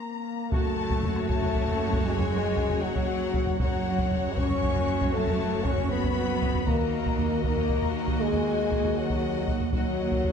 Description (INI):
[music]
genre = cinematic, epic orchestral film score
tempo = 78 BPM (dotted quarters)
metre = 12/8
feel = straight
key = F# minor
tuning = A4 = 440 Hz
[part]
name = clear symphonic violin section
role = second line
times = 0.0-10.3 s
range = F#5 to C#6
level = -37 LUFS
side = left 4 dB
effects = none
[part]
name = mellow French horn section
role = sustained chords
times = 0.0-10.3 s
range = F#3 to C#4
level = -28 LUFS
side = left 4 dB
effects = none
[part]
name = rich symphonic violin section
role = melody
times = 0.5-10.3 s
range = C#5 to D#5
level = -40 LUFS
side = left 6 dB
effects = none
[part]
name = clear symphonic viola section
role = accompaniment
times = 0.5-10.3 s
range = F#4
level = -36 LUFS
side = right 3 dB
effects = none
[part]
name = rich symphonic cello section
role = bass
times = 0.5-10.3 s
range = D#2 to F#2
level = -32 LUFS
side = right 4 dB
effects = none
[part]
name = rich symphonic double bass section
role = bass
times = 0.5-10.3 s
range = F#1 to D#2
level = -33 LUFS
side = right 6 dB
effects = none
[part]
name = solo taiko drums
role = drums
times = 0.5-10.3 s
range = none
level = -29 LUFS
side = equal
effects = none
[sound]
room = moderate concert hall reverb, RT60 2.3 s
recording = dark, warm production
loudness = -24 LUFS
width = side -7 dB against mid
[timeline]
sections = 0.5-10.3 A section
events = break 0.0-0.5; drum fill 0.0-0.5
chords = 0.0 N.C.; 0.5 F#m; 6.7 D#m